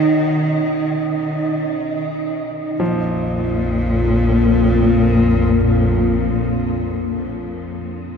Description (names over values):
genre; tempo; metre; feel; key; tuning
dark ambient drone; free time; none; none; Bb phrygian; A4 = 439 Hz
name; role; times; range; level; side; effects
clear cello; melody; 0.0-7.3 s; Bb2 to D#3; -21 LUFS; left 1 dB; diffuse ambient delay
deep dark ambient pad; sustained chords; 0.0-7.4 s; Bb3 to F#5; -20 LUFS; equal; chorus, built-in reverb
clear concert grand piano; arpeggios; 0.0-8.2 s; B1 to F3; -28 LUFS; equal; diffuse ambient delay
flickering grainy texture; texture; 0.0-2.8 s; D#5; -29 LUFS; right 2 dB; built-in reverb
organ-like drone; drone; 3.2-7.3 s; Bb1 to F2; -19 LUFS; left 1 dB; ensemble chorus, built-in reverb
room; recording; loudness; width
wet cathedral reverb, RT60 5.9 s; dark, warm production; -16 LUFS; side -6 dB against mid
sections
0.0-2.8 A section; 2.8-6.6 B section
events
none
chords
0.0 B; 2.8 Bb5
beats
free time